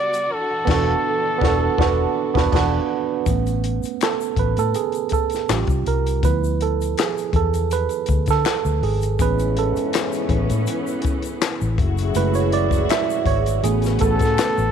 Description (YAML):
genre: R&B, neo-soul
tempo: 81 BPM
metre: 4/4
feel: straight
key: A major from 3.3 s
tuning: A4 = 440 Hz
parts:
  - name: warm flugelhorn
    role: melody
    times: 0.0-2.9, 14.0-14.7 s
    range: A4 to D5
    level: -22 LUFS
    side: left 1 dB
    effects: none
  - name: tine electric piano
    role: accompaniment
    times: 0.0-14.7 s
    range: C#3 to E5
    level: -22 LUFS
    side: right 12 dB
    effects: none
  - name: warm studio string section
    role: sustained chords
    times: 0.0-3.2, 9.2-14.7 s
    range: E3 to A4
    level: -30 LUFS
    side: left 1 dB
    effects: none
  - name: compact cocktail drum kit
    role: drums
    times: 0.1-14.6 s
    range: crash cymbal, handclaps, hi-hat, kick drum, snare drum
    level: -24 LUFS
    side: left 4 dB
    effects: none
  - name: tube shaker and finger snaps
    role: percussion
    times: 0.1-14.7 s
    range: none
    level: -34 LUFS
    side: left 16 dB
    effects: none
  - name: vintage muted fingered electric bass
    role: bass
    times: 0.7-14.7 s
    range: E1 to D3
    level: -21 LUFS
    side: left 1 dB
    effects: none
  - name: warm trombone section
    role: stabs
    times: 9.2-14.7 s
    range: G#2 to F#4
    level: -28 LUFS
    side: left 14 dB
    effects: none
room: light reverb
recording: 1960s-style stereo with parts hard left and right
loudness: -18 LUFS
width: side -8 dB against mid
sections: 0.0-3.3 A section; 3.3-14.7 B section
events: band accent 0.3-3.3; tine electric piano solo 3.3-14.7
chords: 0.3 E9sus4; 3.3 Aadd9; 5.5 A7alt; 6.2 Dm6; 9.2 Amaj9; 11.8 F#m9; 13.6 Amaj9